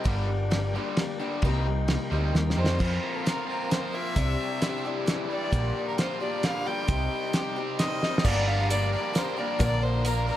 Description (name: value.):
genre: folk rock and heartland rock.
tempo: 132 BPM.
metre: 3/4.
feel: straight.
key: G minor.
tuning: A4 = 441 Hz.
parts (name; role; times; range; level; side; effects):
picked twelve-string acoustic guitar; accompaniment; 0.0-10.4 s; G2 to Bb4; -33 LUFS; left 5 dB; none.
tonewheel organ; sustained chords; 0.0-10.4 s; G4 to D6; -41 LUFS; right 1 dB; none.
raw garage guitar; riff; 0.0-10.4 s; F2 to Bb4; -32 LUFS; equal; overdrive.
hollow-body short-scale picked electric bass; bass; 0.1-10.3 s; G1 to F2; -26 LUFS; equal; none.
cloth-damped thuddy drum kit; drums; 0.1-10.2 s; crash cymbal, hi-hat, kick drum, ride cymbal, snare drum; -29 LUFS; right 1 dB; none.
rich fiddle; melody; 2.6-10.4 s; A4 to G5; -32 LUFS; equal; none.
clear grand piano; accompaniment; 8.2-10.4 s; F4 to F5; -40 LUFS; right 6 dB; none.
tambourine; percussion; 8.3-10.3 s; none; -41 LUFS; right 8 dB; none.
room: light reverb.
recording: dark, warm production.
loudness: -24 LUFS.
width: side -12 dB against mid.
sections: 0.0-2.8 A section; 2.8-8.2 B section; 8.2-10.4 C section.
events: drum fill 2.3-2.8, 8.0.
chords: 0.1 Gm; 1.4 Cm7; 2.8 Fsus4; 4.2 Cadd9; 5.5 Gm7/Bb; 6.9 Cm; 8.2 Gm7; 9.6 Bb.